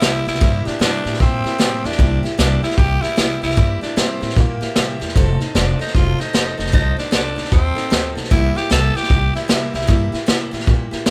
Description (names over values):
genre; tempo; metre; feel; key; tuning
rockabilly; 152 BPM; 4/4; swing 63% on 8ths; C mixolydian; A4 = 444 Hz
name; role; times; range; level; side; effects
growling tenor saxophone; melody; 0.0-10.2 s; Bb3 to A4; -25 LUFS; equal; none
picked steel-string acoustic guitar; accompaniment; 0.0-11.1 s; C3 to A4; -28 LUFS; equal; none
upright bass; bass; 0.0-11.1 s; F1 to Bb2; -23 LUFS; equal; none
vintage drum kit; drums; 0.0-11.1 s; hi-hat, kick drum, snare drum; -20 LUFS; equal; none
room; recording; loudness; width
light reverb; band playing live in one room; -18 LUFS; mono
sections
0.0-11.1 A section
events
none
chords
0.0 C7; 5.1 F7; 8.3 C7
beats
0.02 | 0.41 0.81 1.20 1.60 | 1.99 2.39 2.78 3.18 | 3.57 3.96 4.36 4.75 | 5.15 5.54 5.94 6.33 | 6.73 7.12 7.52 7.91 | 8.31 8.70 9.10 9.49 | 9.88 10.28 10.67 11.07